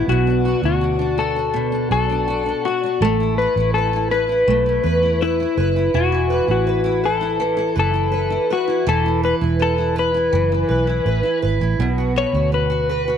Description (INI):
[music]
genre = acoustic pop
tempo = 82 BPM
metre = 4/4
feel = straight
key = unclear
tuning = A4 = 440 Hz
[part]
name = electric slide guitar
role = melody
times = 0.0-13.2 s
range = E4 to C#5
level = -20 LUFS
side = left 6 dB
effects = none
[part]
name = fingerpicked steel-string acoustic guitar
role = accompaniment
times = 0.0-13.2 s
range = B2 to B4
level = -22 LUFS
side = right 3 dB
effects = double-tracked left and right
[part]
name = vintage muted fingered electric bass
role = bass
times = 0.1-13.2 s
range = E1 to E2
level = -21 LUFS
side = right 2 dB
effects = none
[sound]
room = moderate spring reverb, RT60 1.6 s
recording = none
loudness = -16 LUFS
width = side -8 dB against mid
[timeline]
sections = 0.1-13.2 A section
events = none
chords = 0.1 Bm7; 3.0 Asus2; 5.9 Esus4; 11.8 Bm